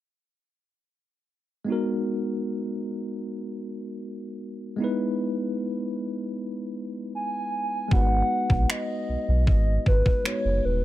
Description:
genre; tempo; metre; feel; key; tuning
contemporary R&B; 77 BPM; 4/4; straight; G# minor; A4 = 439 Hz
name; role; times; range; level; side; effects
tine electric piano; accompaniment; 1.6-10.8 s; G#3 to B4; -29 LUFS; equal; fast stereo tremolo
hollow clarinet-like synth lead; melody; 7.2-10.8 s; B4 to G#5; -27 LUFS; equal; chorus
warm sub bass; bass; 7.9-10.8 s; D#1 to B1; -23 LUFS; equal; none
detuned 8-bit digital drum machine; drums; 7.9-10.4 s; finger snaps, kick drum; -22 LUFS; equal; none
room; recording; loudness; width
little or no reverb; none; -24 LUFS; side -14 dB against mid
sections
1.7-7.9 A section; 7.9-10.8 B section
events
none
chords
1.7 G#m9; 4.8 Emaj7; 7.9 G#m7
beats
| 1.68 2.46 3.24 4.02 | 4.80 5.58 6.36 7.13 | 7.91 8.69 9.47 10.25

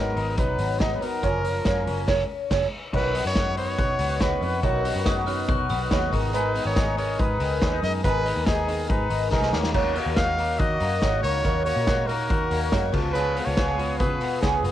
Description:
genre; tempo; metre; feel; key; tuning
jangly indie pop; 141 BPM; 4/4; straight; G# dorian; A4 = 445 Hz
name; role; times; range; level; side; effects
warm trumpet; melody; 0.0-14.7 s; F#4 to E#5; -28 LUFS; equal; cassette tape, tape echo
picked plugged-in twelve-string acoustic guitar; accompaniment; 0.0-14.7 s; F#2 to A#4; -30 LUFS; right 9 dB; none
electric guitar through a small old amp; arpeggios; 0.0-14.7 s; D#3 to G#4; -29 LUFS; left 10 dB; phaser
vintage muted picked electric bass; bass; 0.0-14.7 s; F#1 to D#3; -28 LUFS; equal; none
vintage drum kit; drums; 0.2-14.7 s; crash cymbal, hi-hat, kick drum, snare drum; -27 LUFS; equal; cassette tape
hollow soft pad; sustained chords; 3.6-14.7 s; F#4 to D#6; -36 LUFS; equal; chorus
glockenspiel with brass mallets; second line; 5.1-6.2 s; B5 to F#6; -38 LUFS; right 10 dB; tape echo
room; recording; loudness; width
little or no reverb; home recording on cassette; -21 LUFS; side -12 dB against mid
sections
0.0-2.9 A section; 2.9-14.7 B section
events
band accent 2.1-2.9; drum fill 9.3-9.7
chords
0.0 G#m7; 1.2 F#maj7; 2.9 Badd9; 6.1 G#m; 9.5 D#m7; 12.9 C#7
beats
0.38 0.80 | 1.23 1.66 2.08 2.51 | 2.93 3.36 3.78 4.21 | 4.64 5.06 5.49 5.91 | 6.34 6.76 7.19 7.62 | 8.04 8.47 8.89 9.32 | 9.75 10.17 10.60 11.02 | 11.45 11.87 12.30 12.72 | 13.15 13.57 14.00 14.43

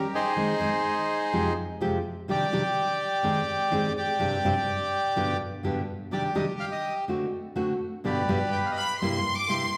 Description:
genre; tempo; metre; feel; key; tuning
tango; 125 BPM; 4/4; rubato; C harmonic minor; A4 = 440 Hz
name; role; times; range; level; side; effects
bandoneon; melody; 0.0-9.0 s; Eb4 to G5; -30 LUFS; equal; none
nylon-string guitar; accompaniment; 0.0-9.7 s; F2 to Ab4; -31 LUFS; equal; none
clear studio violin section; second line; 8.8-9.8 s; B5 to D6; -29 LUFS; equal; none
room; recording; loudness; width
wet recital hall reverb, RT60 1.5 s; recorded in a church or concert hall; -27 LUFS; mono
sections
0.0-9.8 A section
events
none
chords
0.4 Ab/Eb; 1.3 Fmadd9; 2.3 Cmadd9; 3.2 Ab; 4.2 Gsus4; 5.2 G; 6.1 Cmadd9; 7.1 D7; 8.0 G; 9.0 C7/G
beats
| 0.36 0.84 1.32 1.80 | 2.28 2.76 3.23 3.71 | 4.19 4.67 5.16 5.64 | 6.12 6.60 7.08 7.57 | 8.04 8.52 9.00 9.48

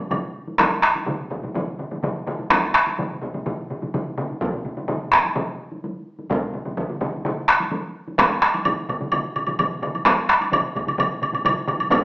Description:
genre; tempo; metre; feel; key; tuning
japanese traditional, taiko drum ensemble; 127 BPM; 4/4; straight; none; none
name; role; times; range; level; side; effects
taiko ensemble; percussion; 0.1-12.0 s; none; -31 LUFS; equal; none
taiko ensemble; percussion; 0.1-12.0 s; none; -23 LUFS; left 1 dB; none
taiko ensemble; percussion; 0.1-12.0 s; none; -26 LUFS; right 1 dB; none
woodblock; percussion; 0.1-0.2, 8.2-12.0 s; none; -22 LUFS; right 1 dB; none
taiko ensemble; percussion; 0.6-12.0 s; none; -26 LUFS; equal; none
room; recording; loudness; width
wet large studio reverb, RT60 0.9 s; band playing live in one room, small speaker sound; -20 LUFS; side -20 dB against mid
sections
0.6-12.0 A section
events
speeding up 0.0-12.0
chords
none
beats
0.10 | 0.58 1.06 1.54 2.02 | 2.50 2.98 3.46 3.93 | 4.41 4.88 5.36 5.83 | 6.30 6.77 7.25 7.71 | 8.18 8.65 9.12 9.59 | 10.05 10.52 10.98 11.45 | 11.91

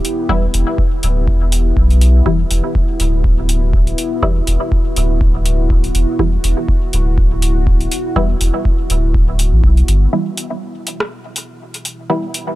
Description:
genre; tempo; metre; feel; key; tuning
dub techno; 122 BPM; 4/4; swing 56% on 16ths; E minor; A4 = 439 Hz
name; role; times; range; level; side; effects
deep dark ambient pad; sustained chords; 0.0-12.6 s; B3 to G4; -23 LUFS; equal; chorus, built-in reverb, sidechain pumping
booming analog drum machine; drums; 0.0-12.5 s; hi-hat, rim click; -21 LUFS; equal; none
filtered dub chord stab; stabs; 0.3-12.3 s; E3 to E4; -21 LUFS; equal; phaser, sidechain pumping, dub echo
warm sub bass; bass; 0.3-10.1 s; D1 to B1; -14 LUFS; equal; sidechain pumping
electronic kick drum; drums; 0.3-9.7 s; none; -16 LUFS; equal; none
room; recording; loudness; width
little or no reverb; dry, gritty hardware recording; -13 LUFS; side -17 dB against mid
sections
0.0-10.1 A section; 10.1-12.6 B section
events
filter sweep on ambient pad 10.1-12.6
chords
0.0 Em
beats
| 0.29 0.78 1.28 1.77 | 2.26 2.75 3.24 3.73 | 4.23 4.72 5.21 5.70 | 6.19 6.69 7.18 7.67 | 8.16 8.65 9.14 9.64 | 10.13 10.62 11.11 11.60 | 12.10

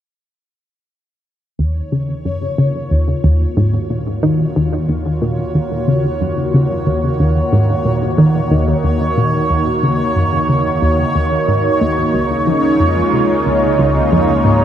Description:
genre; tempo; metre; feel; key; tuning
ambient, sequencer-driven space music; 91 BPM; 4/4; straight; Eb minor; A4 = 444 Hz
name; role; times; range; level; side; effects
lush unison pad; sustained chords; 1.6-14.6 s; Db3 to Gb4; -18 LUFS; equal; chorus, phaser
tight sequenced synth; riff; 1.6-14.6 s; Db2 to F3; -15 LUFS; equal; chorus, cassette tape, analog delay
warm sub bass; bass; 1.6-14.6 s; Db2 to Eb2; -31 LUFS; equal; none
bubbling stepped-filter texture; texture; 1.9-14.6 s; Db5; -20 LUFS; right 2 dB; chorus, built-in reverb
room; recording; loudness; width
wet huge ambient reverb, RT60 8.6 s; dreamy mix soaked in reverb; -13 LUFS; side -10 dB against mid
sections
1.6-14.6 A section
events
fade-in on analog synth pad 1.6-14.6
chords
1.6 Ebm; 12.1 Db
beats
| 1.59 2.25 2.91 3.57 | 4.23 4.89 5.55 6.21 | 6.87 7.53 8.19 8.85 | 9.50 10.16 10.82 11.48 | 12.14 12.80 13.46 14.12

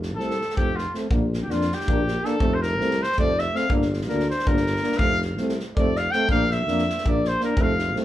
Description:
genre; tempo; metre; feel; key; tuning
balkan folk, Balkan brass band; 324 BPM (eighths); 7/8; straight; F major; A4 = 440 Hz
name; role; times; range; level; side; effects
mellow tuba; bass; 0.0-8.0 s; F1 to F2; -27 LUFS; equal; none
natural country drum kit; percussion; 0.0-8.0 s; kick drum, snare drum; -27 LUFS; equal; none
clear trumpet; second line; 0.2-8.0 s; F4 to G5; -25 LUFS; equal; none
warm euphonium; accompaniment; 0.2-8.0 s; C4 to D4; -29 LUFS; left 4 dB; none
warm trombone; accompaniment; 0.2-8.0 s; A3 to Bb3; -29 LUFS; right 3 dB; none
room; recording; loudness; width
moderate large studio reverb, RT60 1.2 s; band playing live in one room; -20 LUFS; side -13 dB against mid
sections
0.0-8.0 A section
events
trumpet solo 0.0-8.0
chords
0.0 F; 1.1 Bb; 2.4 F; 3.7 Gm; 5.0 F; 6.3 Bb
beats
0.16 0.35 0.54 0.72 0.91 | 1.10 1.28 1.47 1.66 1.84 2.03 2.21 | 2.40 2.59 2.77 2.96 3.14 3.33 3.52 | 3.70 3.89 4.07 4.26 4.44 4.63 4.81 | 5.00 5.18 5.37 5.55 5.73 5.92 6.10 | 6.29 6.47 6.66 6.84 7.02 7.21 7.39 | 7.58 7.76 7.94

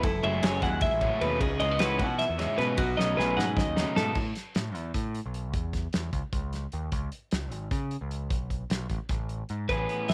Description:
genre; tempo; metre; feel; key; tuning
math rock and midwest emo; 304 BPM (eighths); 7/8; straight; unclear; A4 = 440 Hz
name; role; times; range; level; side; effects
clean electric guitar; accompaniment; 0.0-4.2, 9.7-10.1 s; F#2 to G#4; -35 LUFS; equal; none
twelve-string electric guitar; arpeggios; 0.0-4.2, 9.7-10.1 s; F#4 to F#5; -31 LUFS; equal; slapback echo
crunchy overdriven guitar; riff; 0.0-4.2, 9.7-10.1 s; A2 to E4; -37 LUFS; equal; none
growling picked electric bass; bass; 0.0-10.1 s; F#1 to C#3; -35 LUFS; equal; overdrive
loose indie drum kit; drums; 0.0-10.1 s; crash cymbal, hi-hat, kick drum, ride cymbal, snare drum; -34 LUFS; equal; none
room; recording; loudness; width
light reverb, small room ambience; none; -29 LUFS; mono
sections
0.0-4.2 A section; 4.2-10.1 B section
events
drum fill 3.0-4.2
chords
0.0 F#m9; 1.4 C#m11; 2.8 B9; 4.2 Asus2; 5.5 C#madd9; 6.9 C#5; 8.3 Asus2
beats
| 0.04 0.24 0.43 0.63 0.82 1.02 1.22 | 1.41 1.61 1.80 2.00 2.20 2.39 2.59 | 2.79 2.98 3.18 3.38 3.57 3.77 3.97 | 4.16 4.36 4.56 4.75 4.95 5.15 5.34 | 5.54 5.74 5.94 6.13 6.33 6.53 6.73 | 6.93 7.12 7.32 7.52 7.72 7.91 8.11 | 8.31 8.51 8.71 8.90 9.10 9.30 9.50 | 9.69 9.89 10.09

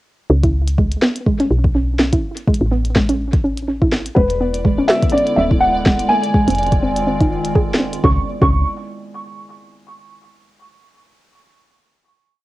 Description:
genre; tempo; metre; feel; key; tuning
IDM; 124 BPM; 4/4; swing 56% on 16ths; C# phrygian; A4 = 440 Hz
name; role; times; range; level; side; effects
soft round pluck; arpeggios; 0.3-8.6 s; G#3 to Ab4; -21 LUFS; right 1 dB; chorus, vintage 12-bit sampler grit, analog delay
woody FM bass; bass; 0.3-8.6 s; D1 to C#2; -19 LUFS; equal; none
electronic kick drum; drums; 0.4-8.5 s; none; -17 LUFS; equal; cassette tape
glitchy drum kit; drums; 0.4-8.0 s; hi-hat, snare drum; -19 LUFS; equal; cassette tape
felt-muted upright piano; melody; 4.2-8.6 s; B4 to C#6; -19 LUFS; equal; vintage 12-bit sampler grit, cassette tape, analog delay
warbly tape-like pad; sustained chords; 4.5-8.3 s; D3 to F4; -25 LUFS; left 1 dB; chorus, built-in reverb, sidechain pumping
pulsing gated texture; texture; 4.2-8.0 s; D5; -29 LUFS; right 2 dB; chorus, built-in reverb, sidechain pumping
room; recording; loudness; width
light reverb; home recording on cassette; -14 LUFS; side -17 dB against mid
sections
0.3-8.0 groove; 8.0-10.0 final chord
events
none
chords
0.3 C#m7; 2.2 Amaj7; 4.2 E7; 6.1 Fm7; 8.0 N.C.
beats
| 0.30 0.78 1.26 1.75 | 2.23 2.71 3.20 3.68 | 4.17 4.65 5.13 5.62 | 6.10 6.59 7.07 7.55 | 8.04 8.52

